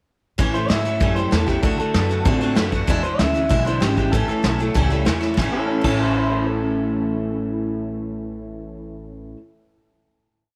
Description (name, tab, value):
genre	rockabilly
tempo	193 BPM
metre	4/4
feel	straight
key	A major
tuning	A4 = 440 Hz
part	picked steel-string acoustic guitar	accompaniment	0.4-9.4 s	E2 to F#4	-29 LUFS	equal	none
part	electric guitar through a small old amp	riff	0.4-9.4 s	E2 to A4	-28 LUFS	equal	ensemble chorus
part	upright bass	bass	0.4-9.3 s	G#1 to A2	-27 LUFS	equal	none
part	soft brush drum kit	drums	0.4-5.9 s	crash cymbal, hi-hat, kick drum, snare drum	-25 LUFS	equal	none
part	electric guitar through a small old amp	melody	0.5-9.3 s	C#4 to E5	-29 LUFS	equal	tape echo
room	light reverb, studio ambience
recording	none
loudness	-20 LUFS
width	mono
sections	0.4-5.4 A section; 5.4-7.9 final chord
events	none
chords	0.4 A; 1.6 D; 2.9 E7; 4.1 A